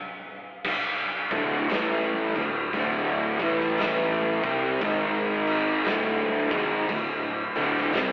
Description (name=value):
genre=stoner and doom metal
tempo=58 BPM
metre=4/4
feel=swing 64% on 8ths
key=unclear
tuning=A4 = 441 Hz
part: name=raw garage drum kit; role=drums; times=0.6-8.1 s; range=crash cymbal, kick drum, snare drum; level=-28 LUFS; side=equal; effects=none
part: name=fuzz guitar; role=riff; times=1.3-8.1 s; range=D2 to C4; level=-26 LUFS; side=equal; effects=distortion
part: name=thick fuzz guitar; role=riff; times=1.3-8.1 s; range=D2 to C4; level=-32 LUFS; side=equal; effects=distortion
part: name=thick fuzz guitar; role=riff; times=1.3-8.1 s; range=D2 to C4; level=-33 LUFS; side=right 1 dB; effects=distortion
part: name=fuzz fingered electric bass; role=bass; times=1.3-8.1 s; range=D1 to C2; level=-32 LUFS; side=equal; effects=overdrive
room=moderate stone room reverb, RT60 1.2 s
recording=rough rehearsal-room recording, warm saturation, telephone sound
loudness=-23 LUFS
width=side -27 dB against mid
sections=0.6-8.1 A section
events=stop 0.0-0.6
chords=0.0 N.C.; 0.6 D5; 4.3 C5; 4.8 G#5; 5.9 D5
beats=| 0.64 1.69 2.73 3.78 | 4.82 5.86 6.90 7.93